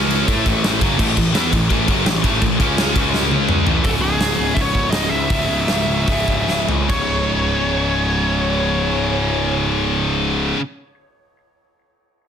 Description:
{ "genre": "heavy metal", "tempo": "142-168 BPM", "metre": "4/4", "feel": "straight", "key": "C# minor", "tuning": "A4 = 441 Hz", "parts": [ { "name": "heavy high-gain guitar", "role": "riff", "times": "0.0-10.6 s", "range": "C#2 to A4", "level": "-19 LUFS", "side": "left 1 dB", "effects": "distortion" }, { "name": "fuzz picked electric bass", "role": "bass", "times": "0.0-10.5 s", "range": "C#1 to A2", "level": "-23 LUFS", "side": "equal", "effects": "overdrive" }, { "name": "big rock drum kit", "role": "drums", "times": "0.1-7.0 s", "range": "crash cymbal, hi-hat, kick drum, ride cymbal, snare drum, toms", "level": "-20 LUFS", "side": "equal", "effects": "none" }, { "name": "high-gain lead guitar", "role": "melody", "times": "3.8-10.5 s", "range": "G#4 to E5", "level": "-23 LUFS", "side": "equal", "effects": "distortion, tape echo" } ], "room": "light reverb", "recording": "dense, heavily limited modern master", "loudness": "-15 LUFS", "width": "side -8 dB against mid", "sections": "0.0-3.8 A section; 3.8-6.9 B section; 6.9-10.3 C section", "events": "drum fill 3.1-3.8, 6.5-6.9; slowing down 3.8-6.9", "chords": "0.3 A5; 2.6 C#5; 3.7 A5; 3.8 C#5" }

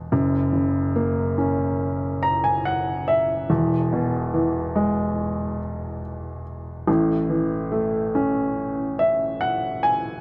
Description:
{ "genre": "pop", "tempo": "71 BPM", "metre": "4/4", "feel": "straight", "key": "unclear", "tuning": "A4 = 440 Hz", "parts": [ { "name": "warm baby grand piano", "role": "solo", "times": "0.0-10.2 s", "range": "E1 to A#5", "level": "-23 LUFS", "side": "equal", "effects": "none" } ], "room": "light reverb", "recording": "none", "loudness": "-23 LUFS", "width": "mono", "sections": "0.0-10.2 A section", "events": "grand piano fill 1.8-3.5, 8.6-10.2", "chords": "0.1 F#; 3.5 E; 6.9 A" }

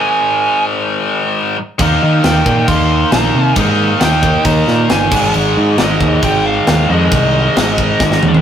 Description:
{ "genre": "hard rock", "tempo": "135 BPM", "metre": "4/4", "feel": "straight", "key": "unclear", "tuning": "A4 = 440 Hz", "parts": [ { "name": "bluesy overdriven lead guitar", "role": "melody", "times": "0.0-8.4 s", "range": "Eb5 to C6", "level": "-17 LUFS", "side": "right 2 dB", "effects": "distortion" }, { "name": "tight distorted guitar", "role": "riff", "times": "0.0-8.4 s", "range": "Ab2 to Eb4", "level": "-16 LUFS", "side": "left 3 dB", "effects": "distortion" }, { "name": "overdriven semi-hollow guitar", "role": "riff", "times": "1.8-8.4 s", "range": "Ab2 to Eb4", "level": "-19 LUFS", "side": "right 5 dB", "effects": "none" }, { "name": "growling fingered electric bass", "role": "bass", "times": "1.8-8.4 s", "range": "G1 to Eb3", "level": "-15 LUFS", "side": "equal", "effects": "overdrive" }, { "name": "tight metal drum kit", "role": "drums", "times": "1.8-8.4 s", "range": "crash cymbal, kick drum, snare drum, toms", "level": "-16 LUFS", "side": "equal", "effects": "none" } ], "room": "light reverb", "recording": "rough rehearsal-room recording, warm saturation", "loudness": "-10 LUFS", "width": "side -9 dB against mid", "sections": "0.0-8.4 A section", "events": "drum fill 8.0-8.4", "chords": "0.0 Ab5; 1.8 Eb; 5.1 Ab5" }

